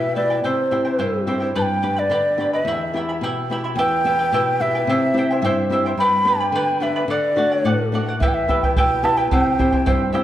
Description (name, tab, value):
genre	andean folk, Andean ensemble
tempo	108 BPM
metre	2/4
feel	straight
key	E minor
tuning	A4 = 441 Hz
part	mellow large quena	melody	0.0-10.1 s	C5 to B5	-20 LUFS	right 1 dB	none
part	charango	accompaniment	0.0-10.2 s	E4 to B5	-24 LUFS	right 1 dB	none
part	flamenco guitar	accompaniment	0.0-10.2 s	E2 to E5	-22 LUFS	left 2 dB	none
part	bombo	percussion	8.2-10.2 s	none	-21 LUFS	right 1 dB	none
room	wet recital hall reverb, RT60 1.5 s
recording	none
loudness	-17 LUFS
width	side -12 dB against mid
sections	0.0-3.8 A section; 3.8-10.2 A section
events	nylon-string guitar fill 5.2-6.0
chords	0.4 C; 1.6 G; 2.7 Em; 4.9 C; 6.0 G; 7.1 D; 8.2 Em; 9.3 C